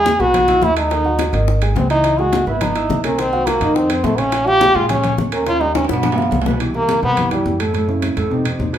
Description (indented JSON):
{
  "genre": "Afro-Cuban jazz",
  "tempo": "211 BPM",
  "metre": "4/4",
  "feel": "straight",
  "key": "unclear",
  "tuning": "A4 = 435 Hz",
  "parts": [
    { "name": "French horn with straight mute", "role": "melody", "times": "0.0-7.6 s", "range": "G3 to G#4", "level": "-16 LUFS", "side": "equal", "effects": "none" },
    { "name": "warm baby grand piano", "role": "accompaniment", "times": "0.0-8.8 s", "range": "A2 to E6", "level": "-21 LUFS", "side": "right 2 dB", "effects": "none" },
    { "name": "upright bass", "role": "bass", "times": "0.0-8.8 s", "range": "Ab1 to Bb2", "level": "-22 LUFS", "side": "equal", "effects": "none" },
    { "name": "bongos", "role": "percussion", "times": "0.1-6.5 s", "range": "none", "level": "-26 LUFS", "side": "left 6 dB", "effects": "none" },
    { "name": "congas", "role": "percussion", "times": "0.1-8.7 s", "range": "none", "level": "-26 LUFS", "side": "left 3 dB", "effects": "none" },
    { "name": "timbales", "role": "percussion", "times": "0.1-8.8 s", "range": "none", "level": "-27 LUFS", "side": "right 4 dB", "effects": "none" }
  ],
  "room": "moderate large studio reverb, RT60 0.9 s",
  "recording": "band playing live in one room",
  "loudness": "-14 LUFS",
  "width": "side -10 dB against mid",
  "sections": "0.0-6.6 A section; 6.6-8.8 B section",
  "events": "drum fill 5.7-6.6; French horn solo 6.6-8.8",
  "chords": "0.0 Emaj7; 0.9 Ebmadd11; 1.5 Ab5; 2.0 Dbm9; 3.2 Cm7b5; 3.8 F5; 4.3 Bbm7; 5.5 Eb7; 6.0 G7; 6.6 Cmaj7; 7.7 F#m7"
}